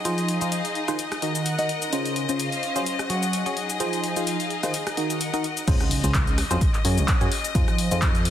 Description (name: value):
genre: piano house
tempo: 128 BPM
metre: 4/4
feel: swing 55% on 16ths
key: Db major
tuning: A4 = 439 Hz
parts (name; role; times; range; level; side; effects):
- clear studio string section; sustained chords; 0.0-8.3 s; Eb5; -31 LUFS; left 6 dB; sidechain pumping
- warm symphonic string section; texture; 0.0-5.7 s; Db4 to Gb5; -31 LUFS; equal; sidechain pumping
- barking FM electric piano; riff; 0.1-8.1 s; Db3 to Eb5; -27 LUFS; right 1 dB; phaser, sidechain pumping, tape echo
- punchy analog drum machine; drums; 0.1-8.3 s; crash cymbal, handclaps, hi-hat, rim click, shaker; -30 LUFS; left 2 dB; none
- fat analog bass; bass; 5.7-8.3 s; Db2 to Gb2; -24 LUFS; equal; sidechain pumping
- electronic kick drum; drums; 5.7-8.1 s; none; -22 LUFS; equal; none
- impact; sound effects; 5.7-7.6 s; none; -32 LUFS; right 1 dB; none
room: light reverb, digital ambience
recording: dense, heavily limited modern master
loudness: -22 LUFS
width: side -10 dB against mid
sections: 0.0-5.7 A section; 5.7-8.3 B section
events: drop 5.7-8.3; impact 5.7-7.6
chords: 0.0 Fm7; 1.0 Ebm; 1.9 Dbmaj7; 2.9 Gbsus2; 3.6 Fm7; 4.7 Ebm; 5.7 Dbmaj7; 6.6 Gbsus2; 7.3 Fm7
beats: | 0.05 0.52 0.99 1.46 | 1.93 2.39 2.86 3.33 | 3.80 4.27 4.74 5.21 | 5.68 6.14 6.61 7.08 | 7.55 8.02